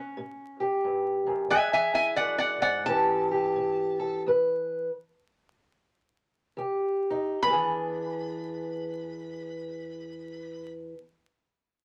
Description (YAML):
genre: acoustic country blues, solo or duo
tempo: 69-90 BPM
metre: 4/4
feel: swing 63% on 8ths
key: E mixolydian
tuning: A4 = 440 Hz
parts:
  - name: fingerpicked steel-string acoustic guitar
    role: accompaniment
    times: 0.0-11.0 s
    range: E2 to B4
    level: -31 LUFS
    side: equal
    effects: none
  - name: lap resonator guitar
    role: melody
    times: 1.5-10.7 s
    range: D5 to B5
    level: -28 LUFS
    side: equal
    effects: none
room: moderate small room reverb, RT60 0.5 s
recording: vinyl crackle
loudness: -27 LUFS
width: mono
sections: 0.0-7.4 A section; 7.4-10.9 B section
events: slowing down 1.5-7.4; stop 4.2-6.6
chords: 0.0 A7; 1.5 E7; 2.8 A7; 4.2 E5; 6.6 Fsus2; 7.4 E7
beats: 0.14 0.82 | 1.49 2.16 2.84 3.54 | 4.25 4.99 5.75 6.56 | 7.41 8.28 9.15 10.02